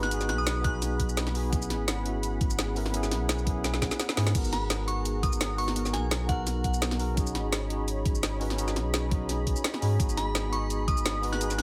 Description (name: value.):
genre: liquid drum and bass.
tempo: 170 BPM.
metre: 4/4.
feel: swing 53% on 16ths.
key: unclear.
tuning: A4 = 435 Hz.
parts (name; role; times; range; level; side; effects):
glassy synth bell; melody; 0.0-0.9, 4.5-6.6, 10.2-11.6 s; F#5 to F#6; -36 LUFS; equal; chorus, digital delay.
tine electric piano; accompaniment; 0.0-11.6 s; B3 to B4; -36 LUFS; equal; medium tremolo, digital delay.
warm analog pad; sustained chords; 0.0-11.6 s; B3 to B5; -41 LUFS; equal; chorus, sidechain pumping.
warm sub bass; bass; 0.0-11.6 s; G#1 to G#2; -33 LUFS; equal; none.
drum and bass drum kit; drums; 0.0-11.6 s; crash cymbal, hi-hat, shaker, snare drum; -34 LUFS; equal; overdrive, studio reverb.
electronic kick drum; drums; 0.6-11.0 s; none; -32 LUFS; equal; overdrive, studio reverb.
room: light reverb, digital ambience.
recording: none.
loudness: -28 LUFS.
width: mono.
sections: 0.0-11.6 A section.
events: drum fill 3.6-4.3.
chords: 0.0 B6/G#; 1.5 F#9sus4/G#; 4.3 G#m9; 7.2 B69/G#.